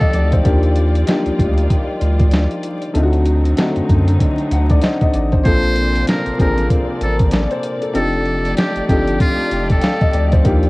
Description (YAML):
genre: hip hop, boom-bap hip-hop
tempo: 96 BPM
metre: 4/4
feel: swing 59% on 16ths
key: Bb major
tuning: A4 = 439 Hz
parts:
  - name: trumpet with metal mute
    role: melody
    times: 0.0-0.4, 5.4-10.4 s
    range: F4 to C5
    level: -23 LUFS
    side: equal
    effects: cassette tape, tape echo
  - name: clear upright piano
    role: accompaniment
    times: 0.0-10.7 s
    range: Bb2 to F#5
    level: -19 LUFS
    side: left 2 dB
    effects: cassette tape
  - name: muted studio string section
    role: sustained chords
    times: 0.0-10.7 s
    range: C3 to D5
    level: -25 LUFS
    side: equal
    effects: cassette tape
  - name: boom bap sampler-style drum kit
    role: drums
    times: 0.0-10.7 s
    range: hi-hat, kick drum, snare drum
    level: -16 LUFS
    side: equal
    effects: cassette tape
  - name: round analog bass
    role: bass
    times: 0.1-10.7 s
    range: F1 to F#2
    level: -17 LUFS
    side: equal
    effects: none
room: little or no reverb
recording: home recording on cassette, vinyl crackle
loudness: -13 LUFS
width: side -23 dB against mid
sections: 0.0-5.5 A section; 5.5-10.7 A section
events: none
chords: 0.5 Ebmaj9; 3.0 D7b9; 5.5 Bbmaj9; 8.0 F13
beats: | 0.45 1.08 1.70 2.33 | 2.95 3.58 4.20 4.83 | 5.45 6.08 6.70 7.33 | 7.95 8.58 9.20 9.83 | 10.45